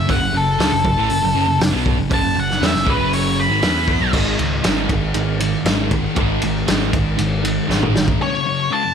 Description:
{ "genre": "quiet-loud alternative rock", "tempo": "118 BPM", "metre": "4/4", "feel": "straight", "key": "unclear", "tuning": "A4 = 440 Hz", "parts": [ { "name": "octave-fuzz lead guitar", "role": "melody", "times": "0.0-4.1, 8.2-8.9 s", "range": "A4 to B5", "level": "-20 LUFS", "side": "left 1 dB", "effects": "distortion, tape echo" }, { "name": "distorted electric guitar", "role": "riff", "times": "0.0-8.2 s", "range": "F#2 to E4", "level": "-23 LUFS", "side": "right 13 dB", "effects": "distortion" }, { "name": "thick fuzz guitar", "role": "riff", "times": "0.0-8.9 s", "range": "F#2 to E4", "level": "-23 LUFS", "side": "left 11 dB", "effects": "distortion" }, { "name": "overdriven picked electric bass", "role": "bass", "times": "0.0-8.1 s", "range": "F#1 to E2", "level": "-23 LUFS", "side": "equal", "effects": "none" }, { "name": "loose indie drum kit", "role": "drums", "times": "0.1-8.2 s", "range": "crash cymbal, hi-hat, kick drum, ride cymbal, snare drum, toms", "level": "-21 LUFS", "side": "equal", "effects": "none" }, { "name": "thick fuzz guitar", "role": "riff", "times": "4.1-8.2 s", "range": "G#2 to G#3", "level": "-26 LUFS", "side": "equal", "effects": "distortion" } ], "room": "small room ambience", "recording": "none", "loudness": "-15 LUFS", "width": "side -7 dB against mid", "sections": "0.0-4.1 A section; 4.1-8.2 B section", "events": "lead electric guitar solo 0.0-4.1; drum fill 7.7-8.2", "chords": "0.0 F#m; 4.1 G#5; 8.2 F#m" }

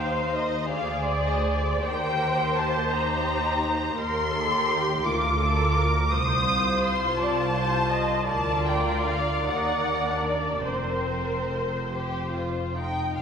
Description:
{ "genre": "classical, slow romantic movement for string orchestra", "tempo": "47-58 BPM (dotted quarters)", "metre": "6/8", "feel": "rubato", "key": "unclear", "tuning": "A4 = 436 Hz", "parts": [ { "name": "muted studio violin section", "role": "melody", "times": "0.0-13.2 s", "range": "C5 to Eb6", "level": "-28 LUFS", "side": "left 1 dB", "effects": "none" }, { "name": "muted studio violin section", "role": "second line", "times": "0.0-13.2 s", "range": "C4 to C5", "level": "-30 LUFS", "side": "left 2 dB", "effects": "none" }, { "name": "muted studio viola section", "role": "accompaniment", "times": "0.0-12.5 s", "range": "F4 to Eb5", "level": "-29 LUFS", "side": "right 1 dB", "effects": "none" }, { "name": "muted studio cello section", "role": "bass", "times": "0.0-13.2 s", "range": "C2 to Bb2", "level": "-32 LUFS", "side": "right 1 dB", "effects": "none" }, { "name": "muted studio double bass section", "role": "bass", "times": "0.0-13.2 s", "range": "F1 to Eb2", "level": "-31 LUFS", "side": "right 2 dB", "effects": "none" } ], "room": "wet recital hall reverb, RT60 1.4 s", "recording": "recorded in a church or concert hall", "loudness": "-23 LUFS", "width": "side -7 dB against mid", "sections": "0.0-13.2 A section", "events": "none", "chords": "0.0 Ebsus2; 0.7 Dm7b5; 1.8 Eb; 5.0 Bb/D; 6.1 F7/C; 8.3 Bb/D; 9.4 Ebm; 10.7 Fsus4" }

